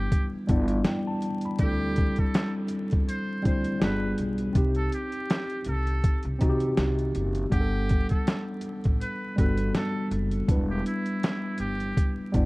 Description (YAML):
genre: lo-fi hip hop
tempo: 81 BPM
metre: 4/4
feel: swing 55% on 16ths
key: G major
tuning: A4 = 442 Hz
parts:
  - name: trumpet with metal mute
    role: melody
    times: 0.0-12.1 s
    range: E4 to C5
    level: -36 LUFS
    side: right 1 dB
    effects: low-pass filter, tape echo
  - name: mellow tine electric piano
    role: accompaniment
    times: 0.0-12.5 s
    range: F#3 to B5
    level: -28 LUFS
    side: equal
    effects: medium stereo tremolo, low-pass filter
  - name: upright bass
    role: bass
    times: 0.0-12.5 s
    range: E1 to C3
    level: -30 LUFS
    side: equal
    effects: none
  - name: boom bap sampler-style drum kit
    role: drums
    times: 0.1-12.5 s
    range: hi-hat, kick drum, snare drum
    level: -25 LUFS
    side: equal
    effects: none
room: small room ambience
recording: dark, warm production, vinyl crackle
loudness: -24 LUFS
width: side -23 dB against mid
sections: 0.0-12.5 A section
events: none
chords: 0.0 Em7; 1.6 D9sus4; 3.8 G7b9; 4.6 Cm; 7.5 Gmaj9; 10.5 Em7